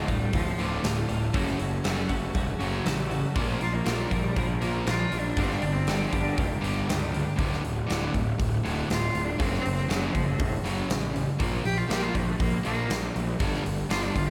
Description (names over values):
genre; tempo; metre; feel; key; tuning
quiet-loud alternative rock; 119 BPM; 4/4; straight; unclear; A4 = 442 Hz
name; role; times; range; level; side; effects
clear cello; melody; 0.0-0.6, 3.6-14.3 s; A2 to G4; -35 LUFS; equal; slapback echo
twelve-string electric guitar; arpeggios; 0.0-7.4 s; D2 to Bb4; -37 LUFS; equal; ensemble chorus, slapback echo, digital delay
overdriven semi-hollow guitar; riff; 0.0-14.3 s; D2 to Bb3; -34 LUFS; equal; slapback echo
sludgy distorted guitar; riff; 0.0-14.3 s; D2 to Bb3; -35 LUFS; equal; none
fuzz picked electric bass; bass; 0.0-14.3 s; D1 to C#2; -34 LUFS; equal; overdrive
huge arena drum kit; drums; 0.1-14.3 s; hi-hat, kick drum, snare drum; -33 LUFS; equal; none
room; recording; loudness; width
moderate scoring stage reverb, RT60 2.0 s; big arena sound; -27 LUFS; mono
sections
0.0-14.3 A section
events
cello solo 0.0-14.3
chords
0.0 Dm; 1.3 F#m; 3.4 Bbm; 5.4 Gm; 7.4 D5; 9.4 F#m; 11.4 Bb5; 13.4 G5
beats
0.34 0.84 | 1.34 1.85 2.35 2.85 | 3.36 3.86 4.36 4.87 | 5.37 5.87 6.38 6.88 | 7.38 7.88 8.39 8.89 | 9.39 9.89 10.40 10.90 | 11.40 11.90 12.40 12.90 | 13.41 13.91